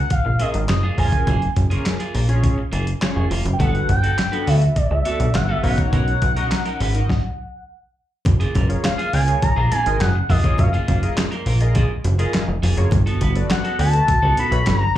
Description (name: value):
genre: early-eighties boogie funk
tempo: 103 BPM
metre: 4/4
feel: straight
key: F# major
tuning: A4 = 438 Hz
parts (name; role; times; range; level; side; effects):
- expressive synth lead; melody; 0.0-15.0 s; D5 to B5; -23 LUFS; equal; chorus, slapback echo
- plucky analog bass; bass; 0.0-14.9 s; E#1 to D2; -18 LUFS; equal; none
- electric guitar at the edge of break-up; riff; 0.1-14.9 s; A#3 to B4; -30 LUFS; right 3 dB; lush chorus, slapback echo
- dusty soul sampler-style drum kit; drums; 0.1-14.8 s; handclaps, hi-hat, kick drum, snare drum; -22 LUFS; equal; overdrive
- chorused polysynth; accompaniment; 0.4-15.0 s; C#4 to E5; -28 LUFS; left 2 dB; slapback echo
- congas; percussion; 8.2-14.8 s; none; -28 LUFS; right 1 dB; slapback echo
room: little or no reverb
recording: live gig heard through the venue's PA, club reverb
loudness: -16 LUFS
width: side -13 dB against mid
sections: 0.0-8.3 A section; 8.3-15.0 B section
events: stop 7.1-8.3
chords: 0.0 F#maj9; 3.6 Gmaj9; 5.6 Bmaj9; 8.3 F#maj9; 12.9 Gmaj9